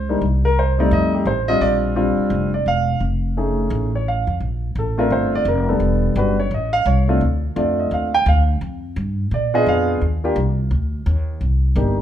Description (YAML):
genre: jazz piano trio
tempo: 172 BPM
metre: 4/4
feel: swing 62% on 8ths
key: Bb major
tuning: A4 = 444 Hz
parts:
  - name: warm grand piano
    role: melody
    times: 0.0-12.0 s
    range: G3 to G5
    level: -19 LUFS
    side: equal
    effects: none
  - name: upright bass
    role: bass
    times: 0.0-12.0 s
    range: E1 to Bb2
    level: -20 LUFS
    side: equal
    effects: none
room: moderate large studio reverb, RT60 1.1 s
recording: band playing live in one room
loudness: -17 LUFS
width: side -10 dB against mid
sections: 0.0-4.4 A section; 4.4-12.0 B section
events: grand piano solo 4.4-12.0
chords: 0.2 N.C.; 0.9 F7; 1.6 Bb69; 3.0 F7alt; 4.4 Bbmaj9; 5.8 Em9; 6.5 F7b13/A; 7.2 Dm7; 8.6 Fsus2; 9.3 Bb7b9; 10.0 Ebmaj7(no3); 11.4 Cm7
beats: | 0.22 0.56 0.92 1.26 | 1.61 1.96 2.31 2.66 | 3.01 3.36 3.71 4.06 | 4.41 4.76 5.11 5.46 | 5.81 6.16 6.51 6.86 | 7.21 7.56 7.91 8.26 | 8.61 8.96 9.31 9.66 | 10.01 10.36 10.71 11.06 | 11.41 11.76